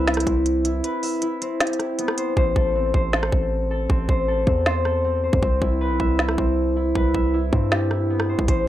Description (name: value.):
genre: hip hop, trap.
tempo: 157 BPM.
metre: 4/4.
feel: half-time.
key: unclear.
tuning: A4 = 439 Hz.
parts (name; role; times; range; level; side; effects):
concert harp; arpeggios; 0.0-8.7 s; B3 to E5; -22 LUFS; left 1 dB; low-pass filter, analog delay.
hard-hitting 808-style bass; bass; 0.0-8.7 s; A1 to G2; -23 LUFS; right 1 dB; none.
organic electronic drum kit; drums; 0.1-8.6 s; hi-hat, kick drum, rim click, snare drum; -23 LUFS; right 1 dB; none.
room: digital ambience.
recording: dry, gritty hardware recording.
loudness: -19 LUFS.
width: side -12 dB against mid.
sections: 0.0-8.7 A section.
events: break 0.8-2.4; hi-hats muted 2.4-8.5.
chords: 0.0 Cmaj7; 2.4 Am; 5.4 Cmaj7.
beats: 0.08 0.46 | 0.84 1.22 1.60 1.99 | 2.37 2.75 3.13 3.52 | 3.90 4.28 4.66 5.04 | 5.43 5.81 6.19 6.57 | 6.96 7.34 7.72 8.10 | 8.48.